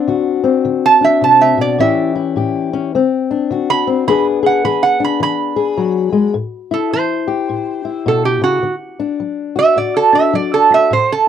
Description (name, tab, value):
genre	acoustic country blues, solo or duo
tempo	105 BPM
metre	4/4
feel	swing 62% on 8ths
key	unclear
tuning	A4 = 438 Hz
part	fingerpicked old ladder-braced acoustic guitar	accompaniment	0.0-11.3 s	A2 to G#4	-16 LUFS	left 7 dB	none
part	lap resonator guitar	melody	0.9-11.3 s	F#4 to B5	-13 LUFS	right 5 dB	none
room	little or no reverb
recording	dry, close 1970s-style studio recording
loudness	-12 LUFS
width	side -9 dB against mid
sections	0.0-6.4 A section; 6.4-11.3 A section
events	resonator guitar played with a steel bar solo 0.0-6.4, 6.4-11.3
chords	0.0 D7; 1.8 A7; 2.9 D7; 4.1 E7; 6.4 A7(no3); 8.6 D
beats	0.08 0.65 1.22 | 1.79 2.36 2.93 3.50 | 4.07 4.64 5.21 5.78 | 6.35 6.92 7.49 8.06 | 8.63 9.20 9.77 10.34 | 10.91